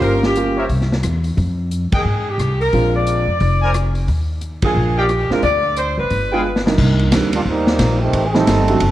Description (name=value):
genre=jazz, big band swing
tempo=177 BPM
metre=4/4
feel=swing 62% on 8ths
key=Eb major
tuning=A4 = 440 Hz
part: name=warm saxophone section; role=melody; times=0.0-6.6 s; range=G4 to D5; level=-19 LUFS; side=left 1 dB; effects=none
part: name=clear concert grand piano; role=accompaniment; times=0.0-0.6, 2.7-8.8 s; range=C3 to G4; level=-20 LUFS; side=right 3 dB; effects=none
part: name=upright bass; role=bass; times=0.0-8.9 s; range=F1 to Ab2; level=-19 LUFS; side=equal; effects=none
part: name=swinging big-band drum kit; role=drums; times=0.0-8.9 s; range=crash cymbal, hi-hat, kick drum, ride cymbal, rim click, snare drum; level=-22 LUFS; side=equal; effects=none
part: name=mellow trumpet section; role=stabs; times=0.6-6.4 s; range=Ab4 to Ab5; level=-25 LUFS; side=equal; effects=none
part: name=clear trombone section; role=second line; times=7.3-8.9 s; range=Eb3 to A4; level=-18 LUFS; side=right 2 dB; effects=none
room=light reverb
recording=worn, warbling old tape, cassette tape, warbly pitch drift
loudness=-15 LUFS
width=side -14 dB against mid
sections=0.0-6.8 A section; 6.8-8.9 B section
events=band accent 1.9, 4.6; drum fill 6.5-6.8; trombone section solo 6.8-8.9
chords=0.0 Gm7b5; 0.7 C; 1.4 Fmadd9; 2.7 Bb9; 4.1 Ebmaj9; 5.4 Bm (rootless); 6.1 G7b9; 6.8 Cm7; 8.1 Am7b5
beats=| 0.02 0.36 0.70 1.04 | 1.38 1.71 2.05 2.39 | 2.73 3.07 3.41 3.74 | 4.08 4.42 4.76 5.10 | 5.44 5.77 6.11 6.45 | 6.79 7.13 7.46 7.80 | 8.14 8.48 8.81